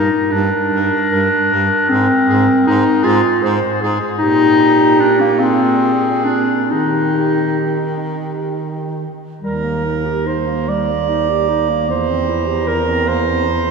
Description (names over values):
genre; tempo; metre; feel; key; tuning
classical, lyrical piece for single-reed quartet; 43-54 BPM (dotted quarters); 6/8; rubato; Eb major; A4 = 441 Hz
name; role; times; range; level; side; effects
warm clarinet; melody; 0.0-13.7 s; F4 to Bb5; -23 LUFS; left 4 dB; none
clear alto saxophone; second line; 0.0-13.7 s; G4 to D5; -21 LUFS; right 7 dB; none
warm clarinet; accompaniment; 0.0-13.7 s; G3 to G4; -16 LUFS; left 1 dB; none
warm baritone saxophone; bass; 0.0-13.7 s; Eb2 to Eb3; -21 LUFS; right 2 dB; none
room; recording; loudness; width
wet cathedral reverb, RT60 4.4 s; studio ambience; -13 LUFS; side -5 dB against mid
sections
0.0-9.4 A section; 9.4-13.7 A section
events
none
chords
0.0 Eb/G; 1.9 Ab; 4.2 Eb/Bb; 5.4 Bbsus2; 6.7 Eb; 11.9 C7/E